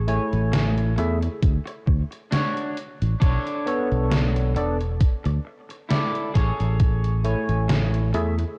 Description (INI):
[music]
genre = vaporwave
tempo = 67 BPM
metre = 4/4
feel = swing 55% on 16ths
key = A major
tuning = A4 = 440 Hz
[part]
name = electric guitar at the edge of break-up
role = riff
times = 0.0-8.4 s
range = D4 to D5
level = -34 LUFS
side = equal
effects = lush chorus, tape echo
[part]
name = fingered electric bass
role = bass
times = 0.0-8.4 s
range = E1 to E2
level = -25 LUFS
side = equal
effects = none
[part]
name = barky tine electric piano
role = accompaniment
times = 0.1-8.3 s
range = A3 to G#5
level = -29 LUFS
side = equal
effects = analog chorus, vintage 12-bit sampler grit, tape echo
[part]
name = gated 80s digital drum machine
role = drums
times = 0.1-8.6 s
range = hi-hat, snare drum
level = -29 LUFS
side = equal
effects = gated reverb, gated reverb snare, overdrive
[part]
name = electronic kick drum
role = drums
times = 1.4-7.0 s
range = none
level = -21 LUFS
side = equal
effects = overdrive
[sound]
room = light reverb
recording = cassette tape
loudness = -23 LUFS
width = mono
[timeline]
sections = 0.0-8.6 A section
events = none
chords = 0.0 Amaj7; 1.4 Dmaj7; 3.2 Bm9; 5.0 E7sus4; 6.4 Amaj7